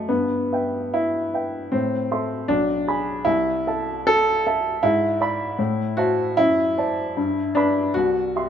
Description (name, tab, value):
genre	classical, romantic character piece for solo piano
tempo	69-81 BPM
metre	2/4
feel	rubato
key	unclear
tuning	A4 = 438 Hz
part	warm baby grand piano	solo	0.0-8.5 s	B1 to C6	-20 LUFS	equal	none
room	moderate recital hall reverb, RT60 1.6 s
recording	close, detailed microphones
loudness	-19 LUFS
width	side -8 dB against mid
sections	0.0-8.5 A section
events	none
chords	0.1 Em/G; 1.7 Am; 2.5 G#dim/B; 3.3 Am/C; 4.8 E7/G#; 5.6 Am; 6.4 D7/F#; 7.2 G; 7.9 C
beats	| 0.10 0.94 | 1.72 2.50 | 3.26 4.08 | 4.84 5.59 | 6.37 7.17 | 7.95